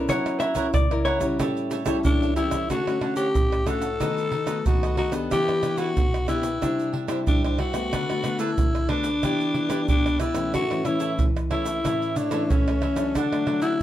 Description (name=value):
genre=samba and choro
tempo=92 BPM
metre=4/4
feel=straight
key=D major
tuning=A4 = 440 Hz
part: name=vintage hollow-body jazz guitar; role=second line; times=0.0-1.3 s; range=C#5 to E5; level=-26 LUFS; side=left 2 dB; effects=none
part: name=cavaquinho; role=accompaniment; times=0.0-13.7 s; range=D4 to F#5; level=-32 LUFS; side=right 6 dB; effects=none
part: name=nylon-string guitar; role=accompaniment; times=0.0-13.8 s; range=A2 to A#4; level=-28 LUFS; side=left 3 dB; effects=none
part: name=egg shaker, surdo, pandeiro and tamborim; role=percussion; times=0.1-13.8 s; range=none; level=-25 LUFS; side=right 2 dB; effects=none
part: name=growling alto saxophone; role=melody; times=2.0-13.8 s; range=C#4 to A4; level=-25 LUFS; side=left 2 dB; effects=none
room=moderate studio ambience, RT60 0.5 s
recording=none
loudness=-21 LUFS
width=side -12 dB against mid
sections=0.0-2.7 A section; 2.7-13.8 B section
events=hollow-body jazz guitar solo 0.0-2.7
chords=0.1 F#7; 1.4 A7; 2.7 Dmaj7; 4.0 B7/D#; 5.3 Em7; 6.6 Cadd9; 7.9 Bm7/D; 9.2 Em7; 10.5 A; 13.2 D